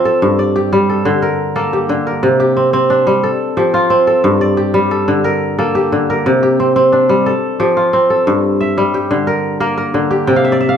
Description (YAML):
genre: west african traditional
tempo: 119 BPM (dotted quarters)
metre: 12/8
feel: straight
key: G dorian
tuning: A4 = 441 Hz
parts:
  - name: kora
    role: solo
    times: 0.0-10.8 s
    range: G2 to G5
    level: -11 LUFS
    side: equal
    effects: none
room: moderate large studio reverb, RT60 1.0 s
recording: band playing live in one room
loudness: -11 LUFS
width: side -8 dB against mid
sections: 0.0-8.3 A section; 8.3-10.8 A section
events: kora fill 10.3-10.8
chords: 0.2 Gm; 2.2 C5; 3.2 F; 4.2 Gm; 6.3 C5; 7.3 F; 8.3 Gm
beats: | 0.22 0.72 1.22 1.73 | 2.23 2.73 3.23 3.74 | 4.24 4.74 5.25 5.75 | 6.25 6.76 7.26 7.76 | 8.27 8.77 9.27 9.78 | 10.28